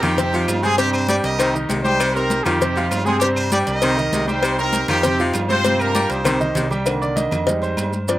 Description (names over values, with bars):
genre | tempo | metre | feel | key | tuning
latin, salsa | 198 BPM | 4/4 | straight | C minor | A4 = 440 Hz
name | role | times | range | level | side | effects
brilliant horn section | melody | 0.0-6.7 s | C4 to Eb5 | -21 LUFS | equal | none
bright baritone saxophone | second line | 0.0-6.7 s | C3 to G3 | -25 LUFS | left 2 dB | slapback echo
bright grand piano | accompaniment | 0.0-8.2 s | C3 to C6 | -22 LUFS | right 2 dB | slapback echo
fingered electric bass | bass | 0.0-8.2 s | C2 to G2 | -25 LUFS | equal | none
agogo bells and timbales | percussion | 0.0-8.2 s | none | -30 LUFS | right 4 dB | slapback echo
claves | percussion | 0.0-7.9 s | none | -33 LUFS | left 2 dB | none
congas | percussion | 0.0-8.2 s | none | -28 LUFS | left 1 dB | none
cowbell | percussion | 0.0-8.2 s | none | -25 LUFS | left 4 dB | none
maracas | percussion | 0.0-8.2 s | none | -31 LUFS | right 4 dB | none
room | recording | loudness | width
little or no reverb | recorded outdoors, with no room sound | -16 LUFS | side -15 dB against mid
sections
0.0-6.9 A section; 6.9-8.2 B section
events
drum fill 5.6-6.9; grand piano solo 6.9-8.2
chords
0.2 F5; 0.8 Gsus4; 1.4 Cm7; 2.6 F5; 3.2 Gsus4; 3.8 Cm7; 5.0 F5; 5.6 G7sus4; 6.3 Cm; 6.9 Cm7; 7.5 Fm7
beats
0.18 0.48 | 0.79 1.09 1.40 1.70 | 2.00 2.31 2.61 2.91 | 3.22 3.52 3.82 4.13 | 4.43 4.73 5.04 5.34 | 5.65 5.95 6.25 6.56 | 6.86 7.17 7.47 7.78 | 8.08